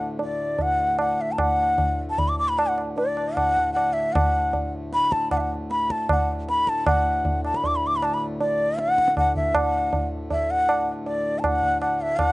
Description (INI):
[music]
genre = indian classical, Hindustani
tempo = 155 BPM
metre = 7/4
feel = straight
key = D raga bhupali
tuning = A4 = 440 Hz
[part]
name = bansuri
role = melody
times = 0.0-12.3 s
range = D5 to D6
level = -22 LUFS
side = left 1 dB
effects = none
[part]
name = pedal harmonium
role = drone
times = 0.0-12.3 s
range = D2 to A2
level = -32 LUFS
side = left 1 dB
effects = none
[part]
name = tabla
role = percussion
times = 0.2-12.3 s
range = none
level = -25 LUFS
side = right 1 dB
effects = slapback echo
[sound]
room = little or no reverb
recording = recorded outdoors, with no room sound, nothing above 10.3 kHz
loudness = -20 LUFS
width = side -20 dB against mid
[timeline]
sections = 0.0-6.9 A section; 6.9-12.3 B section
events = speeding up 0.0-12.3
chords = none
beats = 0.18 0.58 0.98 | 1.38 1.78 2.18 2.57 2.97 3.36 3.75 | 4.15 4.54 4.93 5.32 5.71 6.10 6.48 | 6.87 7.25 7.64 8.02 8.40 8.79 9.17 | 9.55 9.93 10.30 10.68 11.06 11.43 11.81 | 12.18